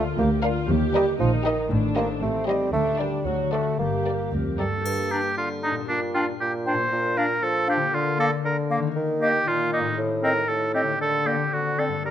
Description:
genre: cinematic, playful, whimsical film cue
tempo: 117 BPM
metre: 2/4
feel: straight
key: G minor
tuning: A4 = 440 Hz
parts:
  - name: warm studio violin section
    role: melody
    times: 0.0-4.8 s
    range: D5 to F5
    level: -33 LUFS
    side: left 3 dB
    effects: none
  - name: dark studio violin section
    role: second line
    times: 0.0-4.8 s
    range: D4 to C5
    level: -33 LUFS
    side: left 1 dB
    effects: none
  - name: mellow bassoon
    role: accompaniment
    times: 0.0-12.1 s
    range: G2 to Bb3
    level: -27 LUFS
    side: right 2 dB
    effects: none
  - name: warm studio viola section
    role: accompaniment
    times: 0.0-4.6 s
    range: C4 to G4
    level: -30 LUFS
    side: right 2 dB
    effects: none
  - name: concert harp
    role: arpeggios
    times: 0.0-12.1 s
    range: G2 to Bb4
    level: -30 LUFS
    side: left 11 dB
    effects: none
  - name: dark studio cello section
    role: bass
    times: 0.0-4.9 s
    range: D2 to Bb2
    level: -30 LUFS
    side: right 2 dB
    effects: none
  - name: rich studio double bass section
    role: bass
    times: 0.0-4.7 s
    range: G1 to Eb2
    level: -28 LUFS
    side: right 2 dB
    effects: none
  - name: warm oboe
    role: second line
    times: 4.6-12.1 s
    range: D4 to C5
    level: -24 LUFS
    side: right 1 dB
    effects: none
  - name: triangle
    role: percussion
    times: 4.9-5.9 s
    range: none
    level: -42 LUFS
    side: left 3 dB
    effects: none
  - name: bright clarinet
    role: second line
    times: 5.1-11.9 s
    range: Bb3 to D4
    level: -32 LUFS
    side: left 1 dB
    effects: none
  - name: concert flute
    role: second line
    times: 5.1-11.8 s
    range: D5 to Bb5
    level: -31 LUFS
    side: left 2 dB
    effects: none
room: moderate recital hall reverb, RT60 1.4 s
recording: close, detailed microphones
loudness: -21 LUFS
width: side -10 dB against mid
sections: 0.0-4.9 A section; 4.9-12.1 A section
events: none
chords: 0.0 Bb/D; 0.7 Eb; 1.7 Am7b5; 2.7 Gm/D; 3.3 D7; 3.8 Gm; 5.9 Gm/Bb; 6.9 Bb; 7.9 Bb/D; 9.0 Eb5; 10.0 Am7b5; 11.0 Gm/D; 11.5 D7

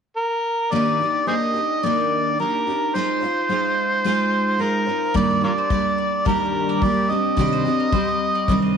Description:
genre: acoustic pop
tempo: 108 BPM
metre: 4/4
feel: swing 55% on 16ths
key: Eb major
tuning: A4 = 437 Hz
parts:
  - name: overdriven harmonica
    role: melody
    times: 0.2-8.6 s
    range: F4 to Eb5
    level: -21 LUFS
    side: equal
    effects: none
  - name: picked steel-string acoustic guitar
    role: accompaniment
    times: 0.7-8.8 s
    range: G2 to C5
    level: -21 LUFS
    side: equal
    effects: double-tracked left and right
  - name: kick drum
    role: drums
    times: 5.1-8.6 s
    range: none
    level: -26 LUFS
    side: left 1 dB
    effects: none
  - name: mandolin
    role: arpeggios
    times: 5.3-8.7 s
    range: Bb4 to Eb5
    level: -34 LUFS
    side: right 6 dB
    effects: none
room: moderate echo chamber reverb, RT60 1.7 s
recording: 1960s-style stereo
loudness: -18 LUFS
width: side -7 dB against mid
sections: 0.7-8.8 A section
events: none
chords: 0.0 N.C.; 0.7 Ebmaj7; 2.9 Ab6; 5.2 Ebmaj7/G; 7.1 Cmadd9

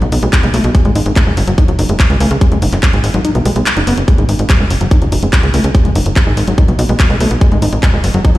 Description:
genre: psychedelic trance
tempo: 144 BPM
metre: 4/4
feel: straight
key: G# phrygian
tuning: A4 = 440 Hz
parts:
  - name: overdriven acid bass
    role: riff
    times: 0.0-8.4 s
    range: F#3 to D#4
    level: -18 LUFS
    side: equal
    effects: distortion, auto-pan, cassette tape, sidechain pumping, digital delay
  - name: tight sequencer bass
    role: bass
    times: 0.0-8.4 s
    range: F#1 to C#2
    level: -13 LUFS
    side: equal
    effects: tube saturation
  - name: garage drum kit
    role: drums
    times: 0.0-8.4 s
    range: handclaps, hi-hat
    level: -20 LUFS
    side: equal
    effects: none
  - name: electronic kick drum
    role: drums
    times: 0.3-8.3 s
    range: none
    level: -10 LUFS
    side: equal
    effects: none
room: light reverb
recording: played on a big sound system in a bare room, large studio reverb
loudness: -10 LUFS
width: side -16 dB against mid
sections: 0.0-8.4 A section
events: filter sweep on acid bass 0.0-8.4; kick drops out 3.2-4.1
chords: 0.0 G#5

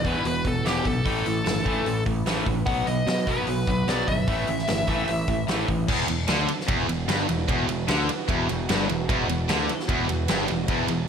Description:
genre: hard rock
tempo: 150 BPM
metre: 4/4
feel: straight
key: E minor from 5.9 s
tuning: A4 = 441 Hz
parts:
  - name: dark smooth lead guitar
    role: melody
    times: 0.0-5.4 s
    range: G4 to F#5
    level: -28 LUFS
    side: equal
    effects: overdrive, slapback echo
  - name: lush unison pad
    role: sustained chords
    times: 0.2-11.1 s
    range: E3 to B4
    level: -35 LUFS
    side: right 2 dB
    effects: chorus
  - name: crunchy overdriven guitar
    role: riff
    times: 0.0-11.0 s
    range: E2 to B3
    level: -29 LUFS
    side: left 10 dB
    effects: none
  - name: tight distorted guitar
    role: riff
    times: 0.0-11.1 s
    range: E2 to B3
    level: -29 LUFS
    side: right 11 dB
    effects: distortion
  - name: growling picked electric bass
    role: bass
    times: 0.0-11.1 s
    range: E1 to B2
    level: -30 LUFS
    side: equal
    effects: overdrive
  - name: huge arena drum kit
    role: drums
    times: 0.0-11.0 s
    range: crash cymbal, hi-hat, kick drum, ride cymbal, snare drum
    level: -28 LUFS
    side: equal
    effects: none
  - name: heavy high-gain guitar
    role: riff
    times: 5.9-11.1 s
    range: E2 to D3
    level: -31 LUFS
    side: right 1 dB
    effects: distortion
room: light reverb, small room reverb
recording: none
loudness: -22 LUFS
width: side -7 dB against mid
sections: 0.0-5.9 A section; 5.9-11.1 B section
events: none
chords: 0.0 E5; 1.1 A5; 2.7 B; 4.3 A5; 5.9 Em

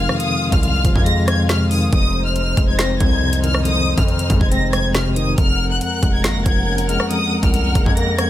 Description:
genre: hip hop, drill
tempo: 139 BPM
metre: 4/4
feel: half-time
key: F phrygian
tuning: A4 = 440 Hz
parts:
  - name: rich studio violin section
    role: melody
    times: 0.0-8.3 s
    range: Eb6 to Bb6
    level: -23 LUFS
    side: left 1 dB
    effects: none
  - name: mellow tine electric piano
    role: accompaniment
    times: 0.0-8.3 s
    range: F2 to Db4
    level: -21 LUFS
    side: left 2 dB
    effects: fast tremolo
  - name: rich symphonic string section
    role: sustained chords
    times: 0.0-8.3 s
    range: Ab3 to Gb5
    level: -25 LUFS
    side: left 1 dB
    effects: none
  - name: distorted 808-style bass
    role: bass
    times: 0.0-8.3 s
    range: F1 to F2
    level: -20 LUFS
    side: equal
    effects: distortion
  - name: drill drum kit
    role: drums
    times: 0.1-8.3 s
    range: finger snaps, hi-hat, kick drum, rim click, snare drum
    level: -19 LUFS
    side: equal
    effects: none
room: digital ambience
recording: none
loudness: -15 LUFS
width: side -13 dB against mid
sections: 0.0-8.3 A section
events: none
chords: 0.0 Fm7; 5.4 Gbadd9/F

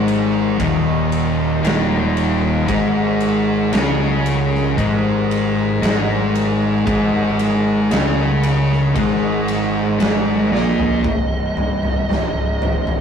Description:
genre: stoner and doom metal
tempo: 57 BPM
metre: 4/4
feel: straight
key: unclear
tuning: A4 = 442 Hz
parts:
  - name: overdriven tonewheel organ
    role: sustained chords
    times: 0.0-11.0 s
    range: Ab3 to F5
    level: -30 LUFS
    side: right 3 dB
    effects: none
  - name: distorted electric guitar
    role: riff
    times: 0.0-11.0 s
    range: Eb2 to Db4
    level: -27 LUFS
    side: right 3 dB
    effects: none
  - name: thick fuzz guitar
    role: riff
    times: 0.0-11.0 s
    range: Eb2 to Db4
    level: -19 LUFS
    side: left 5 dB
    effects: distortion
  - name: thick fuzz guitar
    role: riff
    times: 0.0-11.0 s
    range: Eb2 to Db4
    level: -22 LUFS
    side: right 6 dB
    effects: distortion
  - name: fuzz fingered electric bass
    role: bass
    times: 0.0-13.0 s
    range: C1 to Db2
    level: -23 LUFS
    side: right 1 dB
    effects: overdrive
  - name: big rock drum kit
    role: drums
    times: 0.1-13.0 s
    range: kick drum, ride cymbal, snare drum, toms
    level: -22 LUFS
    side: equal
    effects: none
  - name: fuzz lead guitar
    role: melody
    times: 10.5-13.0 s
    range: Eb5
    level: -25 LUFS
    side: right 3 dB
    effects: distortion
room: moderate small room reverb, RT60 0.5 s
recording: rough rehearsal-room recording, warm saturation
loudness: -15 LUFS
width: side -7 dB against mid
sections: 0.0-11.1 A section; 11.1-13.0 B section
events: drum fill 10.5-11.1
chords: 0.0 Eb5; 2.7 Ab5; 11.1 Cm

